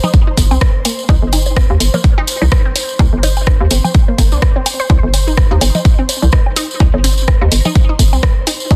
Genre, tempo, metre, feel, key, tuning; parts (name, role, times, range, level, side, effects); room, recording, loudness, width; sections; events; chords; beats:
minimal techno; 126 BPM; 4/4; swing 57% on 16ths; C minor; A4 = 439 Hz
resonant blip pluck; riff; 0.0-8.8 s; Bb3 to C5; -25 LUFS; equal; phaser, analog chorus, sidechain pumping, digital delay
congas, woodblock and bongos; percussion; 0.0-8.8 s; -23 LUFS; equal; digital delay
tambourine; percussion; 0.0-8.8 s; -26 LUFS; equal
airy breathy pad; texture; 0.0-8.8 s; C5; -29 LUFS; equal; chorus, sidechain pumping
electronic kick drum; drums; 0.1-8.8 s; -13 LUFS; equal
house drum kit; drums; 0.1-8.6 s; hi-hat, rim click; -22 LUFS; equal; soft clipping on snare
hollow knocking FM bass; bass; 0.4-8.8 s; G1 to Eb2; -16 LUFS; equal; sidechain pumping
little or no reverb; dense, heavily limited modern master; -12 LUFS; mono
0.0-8.8 A section
0.0 C5
0.14 0.61 | 1.09 1.56 2.04 2.52 | 2.99 3.47 3.95 4.42 | 4.90 5.38 5.85 6.33 | 6.80 7.28 7.76 8.23 | 8.71